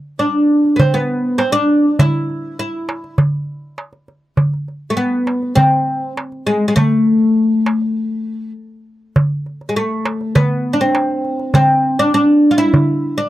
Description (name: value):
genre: Arabic maqam ensemble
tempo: 101 BPM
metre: 4/4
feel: straight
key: A maqam nahawand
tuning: A4 = 440 Hz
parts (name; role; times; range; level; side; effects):
- oud; melody; 0.2-13.3 s; G#3 to F4; -14 LUFS; equal; none
- darbuka; percussion; 0.2-12.9 s; none; -16 LUFS; right 1 dB; none
room: light reverb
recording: dry, close 1970s-style studio recording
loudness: -13 LUFS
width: side -14 dB against mid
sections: 0.0-9.2 A section; 9.2-13.3 B section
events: break 8.0-9.2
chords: none